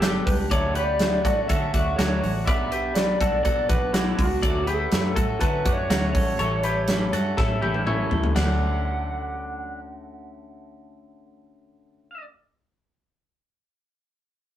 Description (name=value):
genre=jangly indie pop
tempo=122 BPM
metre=4/4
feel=straight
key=D major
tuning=A4 = 441 Hz
part: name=lead guitar through a small cranked amp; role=melody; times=0.0-12.2 s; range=E4 to F#5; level=-28 LUFS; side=equal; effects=overdrive
part: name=electric guitar through a small old amp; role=accompaniment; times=0.0-12.4 s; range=G2 to A4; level=-32 LUFS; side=right 2 dB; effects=none
part: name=twelve-string electric guitar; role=arpeggios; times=0.0-9.8 s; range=C#4 to D5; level=-29 LUFS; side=left 3 dB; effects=none
part: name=vintage muted fingered electric bass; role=bass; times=0.0-12.2 s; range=G1 to D3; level=-29 LUFS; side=equal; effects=none
part: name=big rock drum kit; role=drums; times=0.0-8.5 s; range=china cymbal, hi-hat, kick drum, snare drum, toms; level=-24 LUFS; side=equal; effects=none
room=moderate small room reverb, RT60 0.5 s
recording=rough rehearsal-room recording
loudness=-21 LUFS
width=side -11 dB against mid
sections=0.0-8.4 A section; 8.4-12.3 B section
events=drum fill 7.4-8.4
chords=0.0 G; 0.5 Dmaj7; 2.5 Bm; 4.4 Dmaj7; 6.2 A7; 8.4 Dmaj7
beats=0.02 | 0.51 1.00 1.49 1.98 | 2.47 2.96 3.45 3.94 | 4.43 4.92 5.42 5.91 | 6.40 6.89 7.38 7.87 | 8.36 8.85 9.34 9.83 | 10.32 10.81 11.31 11.80